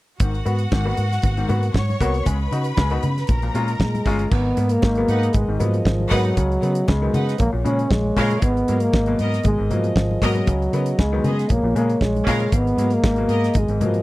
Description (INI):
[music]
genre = disco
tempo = 117 BPM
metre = 4/4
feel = straight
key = G# dorian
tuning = A4 = 440 Hz
[part]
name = clear studio string section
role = second line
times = 0.2-13.4 s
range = B3 to C#6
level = -29 LUFS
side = equal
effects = tape echo
[part]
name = clear grand piano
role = accompaniment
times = 0.2-13.9 s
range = G#2 to F#4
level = -27 LUFS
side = left 3 dB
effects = none
[part]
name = vintage muted fingered electric bass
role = bass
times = 0.2-14.0 s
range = G1 to C#3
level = -22 LUFS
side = equal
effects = none
[part]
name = damped 70s drum kit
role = drums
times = 0.2-14.0 s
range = crash cymbal, hi-hat, kick drum, snare drum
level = -21 LUFS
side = equal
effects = none
[part]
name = congas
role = percussion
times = 0.2-13.9 s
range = none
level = -31 LUFS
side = left 4 dB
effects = none
[part]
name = dark trombone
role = melody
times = 3.8-14.0 s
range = E#3 to C#4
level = -22 LUFS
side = equal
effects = none
[part]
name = mellow French horn section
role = sustained chords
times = 4.3-14.0 s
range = C#3 to D#5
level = -31 LUFS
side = right 1 dB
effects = none
[sound]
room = small room ambience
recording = dry, close 1970s-style studio recording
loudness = -17 LUFS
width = side -18 dB against mid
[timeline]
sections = 0.2-4.3 A section; 4.3-14.0 B section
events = none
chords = 0.2 G#m9; 2.3 C#9sus4; 3.3 A#m7; 4.3 G#m9; 6.4 C#9sus4; 7.4 A#m7; 8.4 G#m9; 10.5 C#9sus4; 11.5 A#m7; 12.5 G#m9